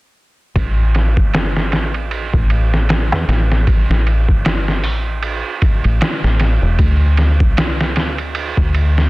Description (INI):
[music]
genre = trip hop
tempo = 77 BPM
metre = 4/4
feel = swing 57% on 16ths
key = A minor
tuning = A4 = 440 Hz
[part]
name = deep dub fingered electric bass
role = bass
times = 0.6-9.1 s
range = E1 to E2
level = -15 LUFS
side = equal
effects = none
[part]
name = trip hop sampler-style drum kit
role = drums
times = 0.6-9.1 s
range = hi-hat, kick drum, ride cymbal, snare drum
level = -16 LUFS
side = equal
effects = overdrive, low-pass filter on kick, vintage 12-bit sampler grit, low-pass filter on cymbals, low-pass filter on snare, low-pass filter on hats
[sound]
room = little or no reverb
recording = dense, heavily limited modern master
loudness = -13 LUFS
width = side -21 dB against mid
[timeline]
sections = 0.6-9.1 A section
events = none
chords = none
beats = | 0.56 1.34 2.12 2.90 | 3.67 4.45 5.23 6.01 | 6.79 7.57 8.35